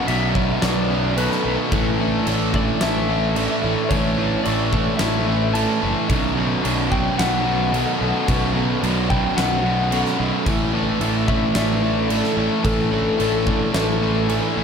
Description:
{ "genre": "post-rock", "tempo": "110 BPM", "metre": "4/4", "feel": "straight", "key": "unclear", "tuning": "A4 = 440 Hz", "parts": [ { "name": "electric slide guitar", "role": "melody", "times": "0.0-14.2 s", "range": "A4 to A5", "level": "-26 LUFS", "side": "left 3 dB", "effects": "slapback echo, analog delay" }, { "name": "warm symphonic string section", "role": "sustained chords", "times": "0.0-14.6 s", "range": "none", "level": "barely audible", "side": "none", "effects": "none" }, { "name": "twangy electric guitar", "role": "arpeggios", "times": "0.0-14.6 s", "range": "B1 to A4", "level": "-29 LUFS", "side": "left 1 dB", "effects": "none" }, { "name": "vibraphone with medium hard mallets", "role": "arpeggios", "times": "0.0-14.6 s", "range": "A4 to C#6", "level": "-33 LUFS", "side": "right 2 dB", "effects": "slapback echo, analog delay" }, { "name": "cranked stack guitar", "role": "riff", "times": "0.0-14.6 s", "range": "B1 to A3", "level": "-24 LUFS", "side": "right 10 dB", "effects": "overdrive, slapback echo" }, { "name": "distorted electric guitar", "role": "riff", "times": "0.0-14.6 s", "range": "B1 to A3", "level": "-24 LUFS", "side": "left 9 dB", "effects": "overdrive, slapback echo" }, { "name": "fuzz fingered electric bass", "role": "bass", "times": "0.1-14.6 s", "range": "F#1 to B1", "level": "-25 LUFS", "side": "equal", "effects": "overdrive" }, { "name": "huge arena drum kit", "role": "drums", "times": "0.1-14.4 s", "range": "crash cymbal, kick drum, snare drum", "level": "-26 LUFS", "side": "equal", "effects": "none" } ], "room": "moderate lush hall reverb, RT60 1.6 s, small room ambience", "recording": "big arena sound", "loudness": "-17 LUFS", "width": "side -6 dB against mid", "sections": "0.0-14.6 A section", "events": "none", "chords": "0.0 Bm7; 1.7 Asus4; 6.1 Bm7; 10.5 Asus4" }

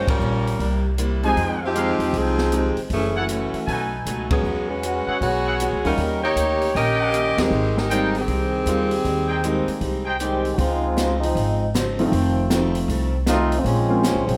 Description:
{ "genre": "jazz, big band swing", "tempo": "156 BPM", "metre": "4/4", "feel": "swing 64% on 8ths", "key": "Ab major, Db major from 10.6 s", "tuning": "A4 = 440 Hz", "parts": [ { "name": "warm saxophone section", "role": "melody", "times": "0.0-10.2 s", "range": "Eb3 to Eb5", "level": "-25 LUFS", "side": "equal", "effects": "none" }, { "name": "picked steel-string acoustic guitar", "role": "accompaniment", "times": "0.0-14.3 s", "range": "F2 to C5", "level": "-32 LUFS", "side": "equal", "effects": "none" }, { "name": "upright bass", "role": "bass", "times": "0.0-14.4 s", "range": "F1 to F2", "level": "-27 LUFS", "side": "equal", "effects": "none" }, { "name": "open jazz drum kit", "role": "drums", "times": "0.1-14.3 s", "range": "hi-hat, kick drum, ride cymbal, snare drum", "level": "-30 LUFS", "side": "equal", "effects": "none" }, { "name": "warm baby grand piano", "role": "accompaniment", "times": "1.2-14.0 s", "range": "F3 to G4", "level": "-29 LUFS", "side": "equal", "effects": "none" }, { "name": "clear trumpet section", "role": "stabs", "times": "1.2-10.2 s", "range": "Eb4 to Ab5", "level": "-30 LUFS", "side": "equal", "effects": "none" }, { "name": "clear trombone section", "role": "second line", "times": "10.2-14.4 s", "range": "Db3 to G4", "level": "-25 LUFS", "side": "equal", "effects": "none" } ], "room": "moderate recital hall reverb, RT60 1.7 s", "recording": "none", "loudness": "-21 LUFS", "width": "mono", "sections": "0.0-10.6 A section; 10.6-14.4 B section", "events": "band accent 0.0, 4.3, 7.3; trombone section solo 10.6-14.4", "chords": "0.0 Gm7b5; 0.6 C7; 1.4 Fm7; 2.9 Gbm7; 3.7 B7; 4.4 E69; 6.0 Eb7; 7.5 Abmaj7; 10.6 Dbmaj9; 12.1 F7; 13.6 Bbm9" }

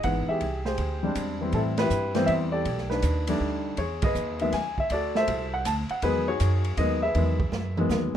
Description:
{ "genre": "jazz piano trio", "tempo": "160 BPM", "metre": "3/4", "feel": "swing 66% on 8ths", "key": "unclear", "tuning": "A4 = 438 Hz", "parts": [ { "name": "warm concert grand piano", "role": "melody", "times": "0.0-8.2 s", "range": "D#3 to A5", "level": "-26 LUFS", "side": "left 1 dB", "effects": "none" }, { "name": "upright bass", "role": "bass", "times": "0.0-8.2 s", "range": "G#1 to A2", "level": "-29 LUFS", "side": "right 1 dB", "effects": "none" }, { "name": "open jazz drum kit", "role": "drums", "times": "0.0-8.0 s", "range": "hi-hat, kick drum, ride cymbal, snare drum, toms", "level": "-32 LUFS", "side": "right 2 dB", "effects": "none" } ], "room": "light reverb", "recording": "minimal, uncompressed stereo recording", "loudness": "-24 LUFS", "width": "side -10 dB against mid", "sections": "0.0-8.2 A section", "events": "band accent 1.7, 4.0; drum fill 7.5-8.2", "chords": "0.4 E7alt; 1.5 Am7; 2.7 B7alt; 3.8 Emaj7; 4.9 D9; 6.0 Emaj9" }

